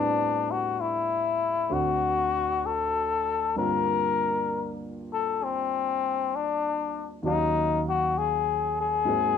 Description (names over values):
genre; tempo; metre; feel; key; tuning
jazz ballad; 65 BPM; 4/4; swing 68% on 8ths; unclear; A4 = 444 Hz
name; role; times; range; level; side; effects
trumpet with cup mute; melody; 0.0-9.4 s; C4 to Bb4; -25 LUFS; left 6 dB; cassette tape
warm concert grand piano; accompaniment; 0.0-9.4 s; D2 to F5; -31 LUFS; right 2 dB; cassette tape
room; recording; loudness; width
wet studio reverb, RT60 0.6 s; home recording on cassette; -24 LUFS; side -7 dB against mid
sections
0.0-9.4 A section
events
none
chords
0.0 Am11; 1.7 D7; 3.6 Gm7; 7.2 Ebm7